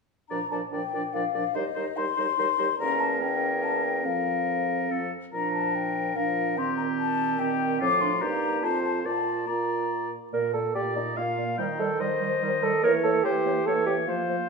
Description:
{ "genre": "quick classical-period movement for wind quintet", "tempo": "144 BPM", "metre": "3/4", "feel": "straight", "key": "Bb major", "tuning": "A4 = 441 Hz", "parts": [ { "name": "mellow hollow silver concert flute", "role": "melody", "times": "0.3-14.4 s", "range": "C5 to D6", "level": "-29 LUFS", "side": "left 8 dB", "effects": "none" }, { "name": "warm oboe", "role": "second line", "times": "0.3-14.5 s", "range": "F4 to G5", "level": "-32 LUFS", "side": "left 2 dB", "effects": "none" }, { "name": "clear clarinet", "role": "accompaniment", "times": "0.3-14.4 s", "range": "G3 to F4", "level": "-33 LUFS", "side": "right 6 dB", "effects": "none" }, { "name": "warm French horn", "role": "accompaniment", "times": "0.3-14.5 s", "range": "Bb2 to C4", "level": "-33 LUFS", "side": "right 1 dB", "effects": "none" }, { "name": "mellow bassoon", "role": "bass", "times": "0.3-14.5 s", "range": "Eb2 to C5", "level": "-29 LUFS", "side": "right 3 dB", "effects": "none" } ], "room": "moderate scoring stage reverb, RT60 1.5 s", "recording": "small room ambience", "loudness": "-24 LUFS", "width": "side -4 dB against mid", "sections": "0.3-10.3 A section; 10.3-14.5 B section", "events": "none", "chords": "0.3 Bb; 1.6 Cm/Eb; 2.8 Edim7; 4.0 Fsus4; 5.3 Bb; 6.6 Cm7/Bb; 7.8 F/A; 8.2 Eb/G; 8.6 F; 9.0 Bb; 11.6 Cm/Eb; 12.8 Edim7", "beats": "| 0.31 0.73 1.14 | 1.55 1.97 2.38 | 2.79 3.21 3.63 | 4.05 4.47 4.90 | 5.32 5.74 6.16 | 6.57 6.99 7.40 | 7.81 8.22 8.63 | 9.05 9.47 9.90 | 10.32 10.75 11.17 | 11.58 12.00 12.42 | 12.83 13.24 13.66 | 14.08" }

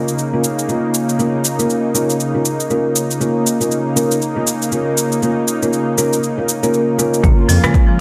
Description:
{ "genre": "afro house", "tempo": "119 BPM", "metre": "4/4", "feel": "swing 59% on 16ths", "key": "Bb minor", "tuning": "A4 = 440 Hz", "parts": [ { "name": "warm analog pad", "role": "sustained chords", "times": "0.0-8.0 s", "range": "Db3 to F4", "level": "-22 LUFS", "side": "equal", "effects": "chorus, tremolo, vintage 12-bit sampler grit, sidechain pumping" }, { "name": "felt-muted upright piano", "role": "stabs", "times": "0.0-8.0 s", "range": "Bb3 to Bb4", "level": "-20 LUFS", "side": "equal", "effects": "sidechain pumping, low-pass filter, digital delay" }, { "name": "afro-pop drum kit", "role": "drums", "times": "0.1-7.9 s", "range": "hi-hat, rim click, shaker", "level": "-23 LUFS", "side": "equal", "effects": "none" }, { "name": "marimba with hard mallets", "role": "arpeggios", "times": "7.2-8.0 s", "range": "F3 to Bb3", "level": "-21 LUFS", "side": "equal", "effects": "sidechain pumping, digital delay" }, { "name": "smooth synth bass", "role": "bass", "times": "7.2-7.6 s", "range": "Bb1 to F2", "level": "-16 LUFS", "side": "equal", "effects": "sidechain pumping" }, { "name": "electronic kick drum", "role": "drums", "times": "7.2-7.9 s", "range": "none", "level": "-14 LUFS", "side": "equal", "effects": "none" }, { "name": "congas", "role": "percussion", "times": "7.2-7.9 s", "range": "none", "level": "-25 LUFS", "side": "equal", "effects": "none" } ], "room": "moderate concert hall reverb, RT60 2.3 s", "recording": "none", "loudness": "-16 LUFS", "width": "mono", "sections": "0.0-7.2 A section", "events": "none", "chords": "0.0 Bbm", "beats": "0.18 0.69 | 1.19 1.69 2.20 2.70 | 3.21 3.71 4.21 4.72 | 5.22 5.73 6.23 6.74 | 7.24 7.74" }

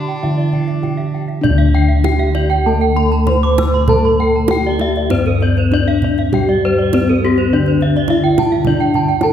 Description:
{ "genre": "Balinese gamelan", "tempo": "99 BPM", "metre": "4/4", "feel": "uneven beats", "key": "D slendro", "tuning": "A4 = 440 Hz", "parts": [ { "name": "gamelan-type bronze metallophone", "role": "melody", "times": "0.0-9.3 s", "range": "C4-45c to C5-45c", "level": "-17 LUFS", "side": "left 1 dB", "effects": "none" }, { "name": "clear fiddle", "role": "second line", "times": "0.0-1.2 s", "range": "D4", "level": "-31 LUFS", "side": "left 2 dB", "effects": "none" }, { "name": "gamelan-type bronze metallophone", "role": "accompaniment", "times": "0.0-9.3 s", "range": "D3 to C4-45c", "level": "-22 LUFS", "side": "left 1 dB", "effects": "none" }, { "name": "gamelan-type bronze metallophone", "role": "arpeggios", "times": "0.0-9.3 s", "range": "G4-35c to E6+30c", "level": "-22 LUFS", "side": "left 3 dB", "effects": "none" }, { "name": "gamelan-type bossed gongs", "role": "bass", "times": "0.0-9.3 s", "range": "D2 to A4+25c", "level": "-16 LUFS", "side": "equal", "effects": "none" }, { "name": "gamelan-type bronze metallophone", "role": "arpeggios", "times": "0.1-9.2 s", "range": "A4+25c to D6", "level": "-22 LUFS", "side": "right 5 dB", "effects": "none" }, { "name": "kendang", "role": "percussion", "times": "0.2-9.3 s", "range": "none", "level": "-23 LUFS", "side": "right 4 dB", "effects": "none" } ], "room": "wet concert hall reverb, RT60 1.8 s", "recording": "heard from further back in the room", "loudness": "-12 LUFS", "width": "side -9 dB against mid", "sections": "0.0-1.4 A section; 1.4-9.3 B section", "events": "none", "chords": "none", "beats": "0.23 0.83 | 1.44 2.05 2.66 3.27 | 3.89 4.50 5.11 5.72 | 6.33 6.94 7.53 8.11 | 8.68 9.24" }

